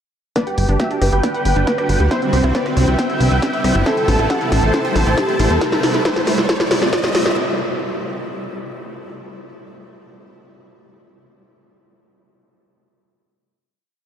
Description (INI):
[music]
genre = uplifting trance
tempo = 137 BPM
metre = 4/4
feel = straight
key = unclear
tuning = A4 = 436 Hz
[part]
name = dense compressed supersaw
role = melody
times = 0.4-5.5 s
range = C4 to A5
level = -23 LUFS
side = right 1 dB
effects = analog chorus, sidechain pumping, low-pass filter, tape echo
[part]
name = clear concert grand piano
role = second line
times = 0.4-5.5 s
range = C4 to A5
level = -30 LUFS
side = left 1 dB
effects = none
[part]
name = felt-muted upright piano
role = second line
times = 0.4-5.6 s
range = G4 to C5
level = -26 LUFS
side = equal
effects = lush chorus, tape echo
[part]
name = wide unison pluck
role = arpeggios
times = 0.4-5.5 s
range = D4 to B5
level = -27 LUFS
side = right 1 dB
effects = wide subtle chorus, sidechain pumping, tape echo
[part]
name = electronic kick drum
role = drums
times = 0.4-7.0 s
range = none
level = -27 LUFS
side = equal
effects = high-pass filter on kick
[part]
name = punchy analog drum machine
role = drums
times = 0.4-7.3 s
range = hi-hat, rim click, snare drum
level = -22 LUFS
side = equal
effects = sidechain pumping on hats
[part]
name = riser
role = sound effects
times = 3.2-7.4 s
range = none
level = -28 LUFS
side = equal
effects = none
[part]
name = plucky analog bass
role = bass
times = 0.6-5.6 s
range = G1 to E2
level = -16 LUFS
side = equal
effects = sidechain pumping
[sound]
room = wet cathedral reverb, RT60 5.8 s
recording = dreamy mix soaked in reverb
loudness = -15 LUFS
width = side -8 dB against mid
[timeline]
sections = 0.4-7.4 build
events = build-up 0.4-7.4; drum fill 0.4-7.4; filter sweep on supersaw synth 0.4-5.6; filter sweep on synth pluck 0.4-5.6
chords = 0.4 Gmaj7; 2.1 Cmaj7; 3.9 Am7; 5.6 N.C.